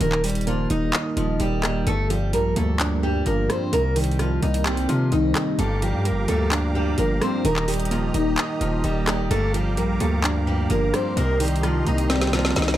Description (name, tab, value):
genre	hip hop, trap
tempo	129 BPM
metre	4/4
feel	half-time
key	G minor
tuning	A4 = 441 Hz
part	picked steel-string acoustic guitar	melody	0.0-12.8 s	F3 to Eb5	-25 LUFS	left 1 dB	tape echo
part	warbly lo-fi synth keys	accompaniment	0.0-12.8 s	G2 to Eb5	-25 LUFS	right 2 dB	chorus
part	distorted 808-style bass	bass	0.0-12.8 s	Eb1 to C3	-24 LUFS	equal	distortion
part	trap drum kit	drums	0.0-12.8 s	handclaps, hi-hat, rim click, snare drum	-27 LUFS	equal	none
part	musette accordion	sustained chords	5.6-12.8 s	G4 to Eb6	-32 LUFS	right 3 dB	none
room	digital ambience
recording	dark, warm production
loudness	-20 LUFS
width	side -13 dB against mid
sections	0.0-12.8 A section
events	drum fill 12.1-12.8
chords	0.0 Eb; 1.9 Gm7; 3.7 Cm7; 5.6 Gm7; 7.4 Eb; 9.3 Gm7; 11.2 Cm7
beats	| 0.01 0.47 0.94 1.40 | 1.87 2.33 2.80 3.26 | 3.73 4.19 4.66 5.12 | 5.59 6.05 6.52 6.98 | 7.45 7.91 8.38 8.84 | 9.31 9.77 10.24 10.70 | 11.17 11.63 12.10 12.56